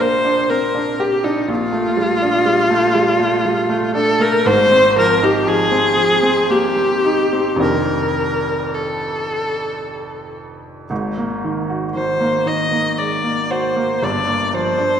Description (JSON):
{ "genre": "classical, impressionist duo for viola and grand piano", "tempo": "53-62 BPM", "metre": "3/4", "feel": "rubato", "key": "unclear", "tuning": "A4 = 440 Hz", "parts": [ { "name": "rich viola", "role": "melody", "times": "0.0-15.0 s", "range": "Eb4 to Eb5", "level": "-16 LUFS", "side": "left 1 dB", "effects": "none" }, { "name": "clear baby grand piano", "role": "accompaniment", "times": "0.0-15.0 s", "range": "F1 to G4", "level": "-20 LUFS", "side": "right 2 dB", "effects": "none" } ], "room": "wet recital hall reverb, RT60 1.6 s", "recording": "none", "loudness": "-15 LUFS", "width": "side -8 dB against mid", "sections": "0.0-15.0 A section", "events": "none", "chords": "0.0 Bb6; 1.5 Gm9/Bb; 4.5 Ab69; 7.6 F13; 10.9 Absus2; 14.0 Gm11" }